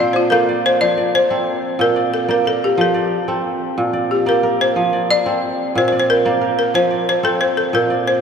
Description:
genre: west african traditional, West African string and xylophone music.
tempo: 121 BPM (dotted quarters).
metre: 12/8.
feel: straight.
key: F major.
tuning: A4 = 444 Hz.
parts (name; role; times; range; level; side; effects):
balafon; melody; 0.0-8.2 s; F4 to D5; -17 LUFS; left 2 dB; none.
kora; arpeggios; 0.0-8.2 s; Bb2 to D5; -18 LUFS; right 2 dB; none.
room: wet cathedral reverb, RT60 5.5 s.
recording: in a vast, echoing space.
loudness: -14 LUFS.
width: side -6 dB against mid.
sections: 0.8-8.2 A section.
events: none.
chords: 0.0 Bb; 0.8 F; 1.8 Bb; 2.8 F; 3.8 Bb; 4.8 F; 5.8 Bb; 6.7 F.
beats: 0.31 | 0.80 1.30 1.79 2.29 | 2.78 3.28 3.77 4.27 | 4.76 5.26 5.75 6.25 | 6.74 7.24 7.74.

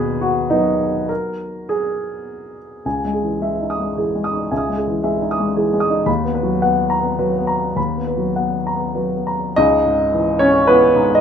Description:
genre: neoclassical minimalist piano.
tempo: 97-117 BPM.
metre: 3/4.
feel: rubato.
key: unclear.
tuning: A4 = 439 Hz.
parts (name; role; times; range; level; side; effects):
warm upright piano; solo; 0.0-11.2 s; C#2 to D#6; -16 LUFS; equal; none.
room: moderate studio reverb, RT60 0.6 s.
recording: minimal, uncompressed stereo recording, lossy compression artefacts.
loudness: -16 LUFS.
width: side -8 dB against mid.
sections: 0.0-2.8 A section; 2.8-9.6 B section; 9.6-11.2 C section.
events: none.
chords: 0.0 G#m7/D#; 2.8 C#madd9; 6.1 Bmaj7/D#; 9.6 C#madd9.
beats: 0.51 | 1.10 1.70 2.27 | 2.85 3.41 3.96 | 4.51 5.03 5.56 | 6.08 6.61 7.18 | 7.77 8.36 8.96 | 9.56 10.13 10.68.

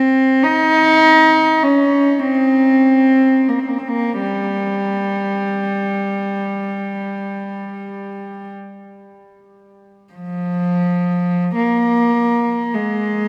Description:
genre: classical, free, expressive piece for unaccompanied cello.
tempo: 32-54 BPM.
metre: 4/4.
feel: rubato.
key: unclear.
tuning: A4 = 445 Hz.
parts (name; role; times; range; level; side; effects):
warm cello; solo; 0.0-13.3 s; F3 to Eb4; -17 LUFS; equal; none.
room: wet cathedral reverb, RT60 5.8 s.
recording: none.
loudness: -16 LUFS.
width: mono.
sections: 0.0-10.1 A section; 10.1-13.3 B section.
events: none.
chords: none.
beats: 0.45 1.61 2.84 | 4.23 5.68 7.13 8.54 | 10.13 11.55 12.73.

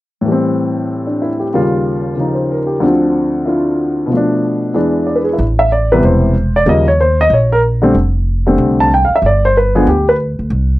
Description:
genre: jazz piano trio.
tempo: 188 BPM.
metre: 4/4.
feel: swing 63% on 8ths.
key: A minor.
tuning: A4 = 442 Hz.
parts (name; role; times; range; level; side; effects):
warm baby grand piano; melody; 0.2-10.2 s; D2 to A5; -12 LUFS; equal; none.
upright bass; bass; 5.4-10.8 s; E1 to D#2; -14 LUFS; equal; none.
room: light reverb.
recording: dry, close 1970s-style studio recording.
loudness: -11 LUFS.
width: side -17 dB against mid.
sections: 0.3-5.4 A section; 5.4-10.8 B section.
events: none.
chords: 0.3 Am7; 1.5 D#9; 2.8 Dm7; 4.1 Bm7b5; 4.7 E7; 5.4 Am7; 6.7 D#7; 7.9 F69; 9.2 G.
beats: | 0.27 0.59 0.91 1.23 | 1.55 1.87 2.19 2.51 | 2.83 3.15 3.47 3.79 | 4.11 4.43 4.75 5.07 | 5.39 5.71 6.03 6.35 | 6.67 6.99 7.31 7.63 | 7.95 8.27 8.59 8.91 | 9.23 9.55 9.87 10.19 | 10.51.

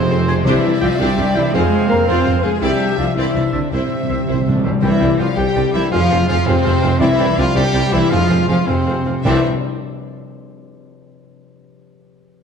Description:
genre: cinematic, heroic adventure film score.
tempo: 110 BPM (dotted quarters).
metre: 6/8.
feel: straight.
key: C major.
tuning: A4 = 442 Hz.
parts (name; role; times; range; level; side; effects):
clear symphonic violin section; second line; 0.0-9.5 s; G4 to E5; -31 LUFS; left 3 dB; none.
mellow hollow concert flute; second line; 0.0-9.5 s; C5 to C6; -31 LUFS; left 1 dB; none.
bright trombone section; sustained chords; 0.0-9.4 s; C3 to D4; -29 LUFS; right 4 dB; none.
mellow French horn section; sustained chords; 0.0-9.4 s; C4 to C5; -21 LUFS; left 6 dB; none.
concert harp; arpeggios; 0.0-10.4 s; C3 to D6; -27 LUFS; left 9 dB; none.
clear trumpet; stabs; 0.0-9.4 s; C4 to F5; -25 LUFS; right 2 dB; none.
mellow tuba; bass; 0.0-9.4 s; F1 to C2; -24 LUFS; right 4 dB; none.
rich symphonic cello section; bass; 0.0-9.5 s; C3 to C4; -21 LUFS; right 2 dB; none.
rich symphonic double bass section; bass; 0.0-9.5 s; C2 to F2; -21 LUFS; right 3 dB; none.
rich symphonic violin section; melody; 0.1-9.5 s; G4 to G5; -28 LUFS; left 2 dB; none.
rich symphonic viola section; accompaniment; 0.1-9.5 s; C4 to Ab4; -27 LUFS; right 1 dB; none.
clear oboe; second line; 0.3-9.4 s; D5 to Ab5; -32 LUFS; equal; none.
mellow clarinet; second line; 0.3-9.4 s; C5 to D5; -33 LUFS; left 2 dB; none.
timpani; percussion; 0.5-1.0, 3.7-9.4 s; C3; -22 LUFS; equal; none.
room: moderate scoring stage reverb, RT60 1.6 s.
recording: dark, warm production.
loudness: -13 LUFS.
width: side -6 dB against mid.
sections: 0.0-4.8 A section; 4.8-9.2 B section; 9.2-10.4 C section.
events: timpani fill 3.7-4.8; slowing down 6.5-9.2.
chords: 0.5 Cadd9; 1.5 Fm; 2.6 Cadd9; 3.7 C; 4.8 Cadd9; 5.9 Fm; 7.0 Cadd9; 8.1 Fm; 9.2 Cadd9.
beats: | 0.46 0.99 | 1.54 2.08 | 2.62 3.17 | 3.72 4.28 | 4.83 5.37 | 5.92 6.46 | 7.00 7.55 | 8.10 8.67 | 9.25 9.83.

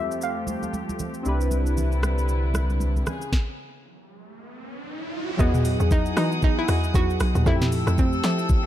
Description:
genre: amapiano.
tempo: 116 BPM.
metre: 4/4.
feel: swing 58% on 16ths.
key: unclear.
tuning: A4 = 439 Hz.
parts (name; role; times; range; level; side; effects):
hollow square pluck; melody; 0.0-1.0, 5.4-8.5 s; B3 to F5; -28 LUFS; equal; chorus, low-pass filter, ping-pong delay.
warm analog keys; accompaniment; 0.0-8.7 s; F3 to D#5; -30 LUFS; left 1 dB; chorus, low-pass filter.
warm studio string section; sustained chords; 0.0-8.7 s; F2 to E6; -33 LUFS; left 2 dB; sidechain pumping, low-pass filter.
smooth R&B drum kit; drums; 0.1-8.6 s; hi-hat, kick drum, rim click, shaker, snare drum, toms; -24 LUFS; equal; none.
congas; percussion; 0.5-3.2 s; none; -34 LUFS; right 2 dB; none.
sub bass with octave; bass; 1.3-3.0 s; C2; -23 LUFS; equal; none.
riser; sound effects; 4.2-5.4 s; none; -34 LUFS; right 3 dB; none.
soft round pluck; stabs; 5.4-8.5 s; F#4 to E5; -33 LUFS; right 5 dB; chorus, ping-pong delay.
hollow log drum bass; bass; 5.4-8.7 s; B1 to F3; -24 LUFS; equal; none.
room: digital ambience.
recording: dark, warm production.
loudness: -21 LUFS.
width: side -12 dB against mid.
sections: 0.0-5.4 A section; 5.4-8.7 B section.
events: filter sweep 0.0-5.4; stop 3.3-5.4; riser 4.2-5.4; drop 5.4-8.7; synth keys fill 8.5.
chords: 0.0 Fadd9; 1.3 Cmaj9; 3.1 C#5; 5.4 Emaj9; 7.5 Fmaj9.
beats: 0.22 0.74 | 1.26 1.77 2.29 2.81 | 3.33 3.84 4.36 4.88 | 5.39 5.91 6.43 6.95 | 7.46 7.98 8.50.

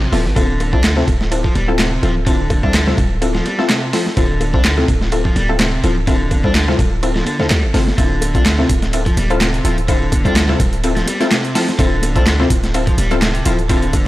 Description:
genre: breakbeat, breaks.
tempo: 126 BPM.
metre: 4/4.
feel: swing 54% on 16ths.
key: D minor.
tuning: A4 = 439 Hz.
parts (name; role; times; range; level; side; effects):
crunchy overdriven guitar; riff; 0.0-14.1 s; C3 to D4; -22 LUFS; right 1 dB; vintage 12-bit sampler grit, low-pass filter, tape echo.
orchestra-hit-like synth stab; stabs; 0.0-14.0 s; C4 to A4; -20 LUFS; left 2 dB; built-in reverb, tape echo.
warm 808-style bass; bass; 0.0-14.1 s; D1 to D2; -18 LUFS; equal; none.
dusty soul sampler-style drum kit; drums; 0.0-14.1 s; hi-hat, kick drum, ride cymbal, snare drum; -18 LUFS; equal; overdrive.
congas and bongos; percussion; 0.3-14.1 s; none; -27 LUFS; left 1 dB; none.
punchy analog drum machine; drums; 0.8-14.0 s; handclaps, hi-hat; -25 LUFS; right 1 dB; overdrive.
room: little or no reverb.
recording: dry, gritty hardware recording, transformer saturation.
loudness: -13 LUFS.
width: side -16 dB against mid.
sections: 0.0-14.1 A section.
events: filter sweep on synth stab 0.0-14.1.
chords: 0.0 Dm9.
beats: | 0.36 0.84 1.31 1.79 | 2.27 2.74 3.22 3.69 | 4.17 4.65 5.12 5.60 | 6.08 6.55 7.03 7.50 | 7.98 8.46 8.93 9.41 | 9.88 10.36 10.84 11.31 | 11.79 12.27 12.74 13.22 | 13.70.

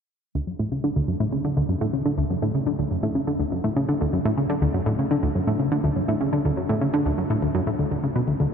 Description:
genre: ambient.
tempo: 123 BPM.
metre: 4/4.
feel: straight.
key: D major.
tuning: A4 = 440 Hz.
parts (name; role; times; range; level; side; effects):
tight sequenced synth; solo; 0.4-8.5 s; D2 to D3; -21 LUFS; equal; chorus, tape echo.
room: wet huge ambient reverb, RT60 7.9 s.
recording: dark, warm production.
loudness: -21 LUFS.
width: side -7 dB against mid.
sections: 0.3-8.5 A section.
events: none.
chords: none.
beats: | 0.35 0.84 1.33 1.81 | 2.30 2.79 3.28 3.77 | 4.25 4.74 5.23 5.72 | 6.20 6.69 7.18 7.67 | 8.15.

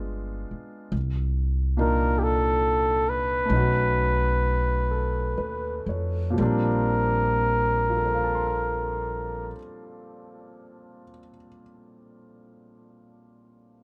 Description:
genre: jazz ballad.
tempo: 40-49 BPM.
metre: 4/4.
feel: swing 68% on 8ths.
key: Bb major.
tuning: A4 = 440 Hz.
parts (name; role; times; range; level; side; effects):
warm concert grand piano; accompaniment; 0.0-13.8 s; Bb2 to F6; -33 LUFS; equal; none.
upright bass; bass; 0.0-9.5 s; G1 to F2; -29 LUFS; equal; none.
breathy trumpet; melody; 1.8-9.5 s; G4 to Cb5; -27 LUFS; equal; none.
room: light reverb.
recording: dark, warm production.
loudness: -25 LUFS.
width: mono.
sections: 0.9-6.4 A section; 6.4-12.4 B section.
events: slowing down 0.0-6.4.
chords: 0.0 G7b9; 0.9 Cm11; 3.5 B7; 6.4 Bb69.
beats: | 0.92 2.19 3.51 4.90 | 6.37 7.88 9.38 10.90.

